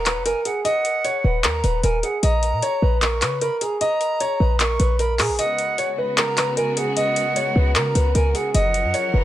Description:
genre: hip hop, trap.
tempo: 152 BPM.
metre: 4/4.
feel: half-time.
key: Eb minor.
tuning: A4 = 439 Hz.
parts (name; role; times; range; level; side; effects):
dark concert grand piano; melody; 0.0-9.2 s; Ab4 to Eb5; -22 LUFS; equal; digital delay.
silver concert flute; second line; 0.0-9.2 s; Gb5 to Db6; -27 LUFS; right 4 dB; digital delay.
short 808-style bass; bass; 0.0-9.2 s; Eb1 to Db3; -20 LUFS; equal; none.
trap drum kit; drums; 0.1-9.0 s; handclaps, hi-hat; -23 LUFS; left 1 dB; vintage 12-bit sampler grit.
warm symphonic string section; sustained chords; 5.4-9.2 s; Db3 to Bb4; -29 LUFS; left 2 dB; none.
room: light reverb, small room ambience.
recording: none.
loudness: -18 LUFS.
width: side -13 dB against mid.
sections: 0.0-9.2 A section.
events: break 5.4-6.2.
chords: 0.0 Ebm; 2.2 Bbm; 5.4 Db7sus4; 8.5 Gbmaj7.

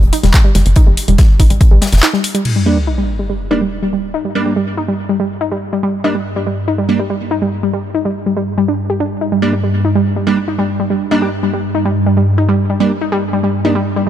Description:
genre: driving peak-time techno.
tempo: 142 BPM.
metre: 4/4.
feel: straight.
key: G minor.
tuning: A4 = 443 Hz.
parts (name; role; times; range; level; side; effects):
tight sequencer bass; bass; 0.0-2.0 s; F1 to Bb1; -12 LUFS; equal; sidechain pumping.
tight metal drum kit; drums; 0.0-2.4 s; hi-hat, snare drum; -27 LUFS; left 3 dB; sidechain pumping on hats, high-pass filter on hats, high-pass filter on snare, high-pass filter on room.
warbly dusty pluck; riff; 0.1-14.1 s; G3 to G4; -17 LUFS; equal; chorus, tube saturation, sidechain pumping, tape echo.
techno drum kit; drums; 0.1-2.5 s; crash cymbal, handclaps, hi-hat; -19 LUFS; left 1 dB; overdrive.
electronic kick drum; drums; 0.3-1.7 s; none; -9 LUFS; equal; none.
deep dark ambient pad; drone; 3.5-14.1 s; G2; -19 LUFS; equal; chorus, built-in reverb, sidechain pumping.
sub drop; sound effects; 2.5-4.1 s; none; -19 LUFS; equal; none.
wavetable chord stab; stabs; 2.7-13.8 s; G3 to D4; -19 LUFS; right 2 dB; sidechain pumping, tape echo.
room: digital ambience.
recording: none.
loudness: -12 LUFS.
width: side -11 dB against mid.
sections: 0.0-2.5 A section; 2.5-14.1 B section.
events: break 2.0-2.5; impact 2.5-4.1.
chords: 0.0 N.C.; 2.5 Gm.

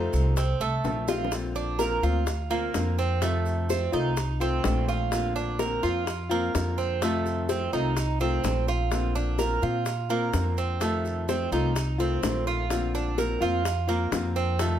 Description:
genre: latin, Cuban son and guajira.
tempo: 126 BPM.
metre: 4/4.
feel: straight.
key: Bb major.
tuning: A4 = 440 Hz.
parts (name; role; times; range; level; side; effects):
nylon-string guitar; melody; 0.0-0.6 s; A4; -36 LUFS; left 3 dB; none.
hollow concert flute; second line; 0.0-0.6 s; C5; -38 LUFS; left 4 dB; none.
nylon-string guitar; accompaniment; 0.0-14.8 s; C3 to F4; -31 LUFS; left 4 dB; none.
Cuban tres; arpeggios; 0.0-14.8 s; A3 to Bb4; -29 LUFS; right 6 dB; none.
upright bass; bass; 0.0-14.8 s; Bb1 to Bb2; -28 LUFS; equal; none.
bongos; percussion; 0.1-14.8 s; none; -32 LUFS; left 6 dB; none.
maracas; percussion; 0.1-14.8 s; none; -42 LUFS; right 4 dB; none.
room: little or no reverb.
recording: close, detailed microphones.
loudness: -24 LUFS.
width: side -10 dB against mid.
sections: 0.0-1.3 A section; 1.3-14.8 B section.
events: drum fill 1.1.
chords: 0.0 F7; 1.3 Bbadd9; 3.2 F7; 5.1 Bbadd9; 7.0 F7; 8.9 Bbadd9; 10.8 F7; 12.7 Bbadd9.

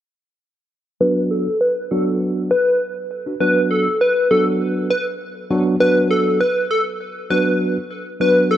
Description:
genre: pop.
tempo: 100 BPM.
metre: 4/4.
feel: straight.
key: B minor.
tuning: A4 = 440 Hz.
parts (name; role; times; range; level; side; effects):
plucky unison lead; melody; 1.0-8.6 s; A4 to B4; -18 LUFS; left 1 dB; low-pass filter, tape echo.
mellow tine electric piano; accompaniment; 1.0-8.6 s; F#3 to F#4; -20 LUFS; right 1 dB; medium stereo tremolo, low-pass filter.
room: moderate plate reverb, RT60 2.6 s.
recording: worn, warbling old tape, cassette tape, warbly pitch drift.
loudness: -16 LUFS.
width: side -11 dB against mid.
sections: 1.0-5.8 A section; 5.8-8.6 B section.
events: filter sweep 1.0-5.8.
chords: 1.0 Bm.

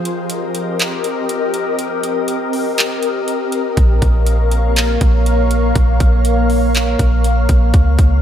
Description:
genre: hip hop, atmospheric cloud-rap.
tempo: 121 BPM.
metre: 4/4.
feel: half-time.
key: unclear.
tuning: A4 = 440 Hz.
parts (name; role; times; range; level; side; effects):
glassy FM pad; sustained chords; 0.0-8.2 s; Db3 to F5; -18 LUFS; left 2 dB; ensemble chorus, built-in reverb, sidechain pumping.
trap drum kit; drums; 0.1-8.1 s; handclaps, hi-hat, kick drum; -17 LUFS; equal; none.
clean 808-style bass; bass; 3.8-8.2 s; Bb1 to Db2; -14 LUFS; equal; none.
room: little or no reverb.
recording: none.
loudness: -13 LUFS.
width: side -10 dB against mid.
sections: 0.0-8.2 A section.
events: break 0.0-3.8.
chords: 0.0 Cm7; 3.8 Bbm.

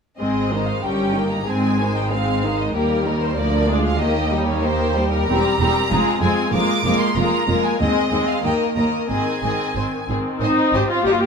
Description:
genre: quick classical-period movement for string orchestra.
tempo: 94 BPM.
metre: 2/4.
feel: rubato.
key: Ab major.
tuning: A4 = 440 Hz.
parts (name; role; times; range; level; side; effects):
rich studio violin section; melody; 0.2-11.1 s; Bb4 to D6; -25 LUFS; right 1 dB; none.
rich studio violin section; second line; 0.2-11.2 s; C4 to Eb5; -25 LUFS; left 1 dB; none.
rich studio viola section; accompaniment; 0.2-11.3 s; Eb3 to G4; -21 LUFS; left 2 dB; none.
rich studio cello section; bass; 0.2-11.3 s; D2 to C4; -25 LUFS; right 1 dB; none.
rich studio double bass section; bass; 0.2-11.1 s; E1 to Eb2; -25 LUFS; right 3 dB; none.
room: moderate recital hall reverb, RT60 1.5 s.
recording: none.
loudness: -17 LUFS.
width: side -6 dB against mid.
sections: 0.2-10.4 A section.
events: none.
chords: 0.2 Ab; 0.8 Eb7/G; 1.5 Ab; 2.8 Eb; 3.4 Bb7/D; 4.0 Eb; 5.3 C7/E; 5.9 Fm; 6.5 Bb5/F; 7.8 Ab/Eb; 8.4 Eb5; 9.1 Ab.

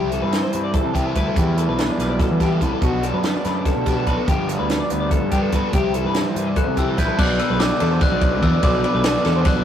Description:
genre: math rock and midwest emo.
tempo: 288 BPM (eighths).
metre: 7/8.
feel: straight.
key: unclear.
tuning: A4 = 440 Hz.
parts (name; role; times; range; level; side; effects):
twangy electric guitar; accompaniment; 0.0-7.2 s; E2 to F#4; -30 LUFS; right 3 dB; none.
twelve-string electric guitar; arpeggios; 0.0-9.6 s; F#4 to D5; -24 LUFS; left 4 dB; spring reverb.
overdriven electric guitar; riff; 0.0-9.6 s; G2 to E4; -24 LUFS; equal; none.
fuzz fingered electric bass; bass; 0.0-9.6 s; G1 to E3; -23 LUFS; right 1 dB; overdrive.
compact cocktail drum kit; drums; 0.1-9.6 s; crash cymbal, hi-hat, kick drum, ride cymbal, snare drum; -22 LUFS; equal; none.
glockenspiel with rubber mallets; melody; 6.6-9.6 s; D6 to G6; -25 LUFS; equal; none.
room: moderate small room reverb, RT60 0.5 s.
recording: rough rehearsal-room recording, tube saturation.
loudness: -17 LUFS.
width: side -9 dB against mid.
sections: 0.0-7.2 A section; 7.2-9.6 B section.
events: none.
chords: 0.0 Cmaj7; 1.4 Em7; 2.8 Bm7; 4.3 Gmaj7; 5.7 Cmaj7; 7.2 Bm.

